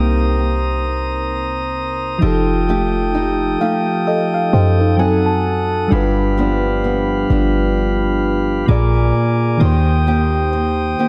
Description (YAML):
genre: R&B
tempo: 65 BPM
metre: 4/4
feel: swing 58% on 16ths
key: C dorian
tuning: A4 = 439 Hz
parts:
  - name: mellow FM electric piano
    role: accompaniment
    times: 0.0-11.1 s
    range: Bb2 to A5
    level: -22 LUFS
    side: equal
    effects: chorus
  - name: pipe organ, flutes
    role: sustained chords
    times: 0.0-11.1 s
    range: G4 to Eb6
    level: -24 LUFS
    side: equal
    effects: none
  - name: nylon-string guitar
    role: arpeggios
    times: 0.0-11.1 s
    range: G2 to G4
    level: -23 LUFS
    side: equal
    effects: delay
  - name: warm 808-style bass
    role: bass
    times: 0.0-11.0 s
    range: F1 to F#2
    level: -21 LUFS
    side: equal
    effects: none
room: moderate plate reverb, RT60 3.4 s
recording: dreamy mix soaked in reverb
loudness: -17 LUFS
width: mono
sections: 0.0-11.1 A section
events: FM electric piano fill 3.1-5.9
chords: 0.0 Cm7; 2.2 F9; 5.0 F#dim7; 5.9 G7; 8.7 Bb7; 9.6 Eb6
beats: 0.37 1.30 | 2.22 3.14 4.07 4.99 | 5.91 6.83 7.76 8.68 | 9.61 10.53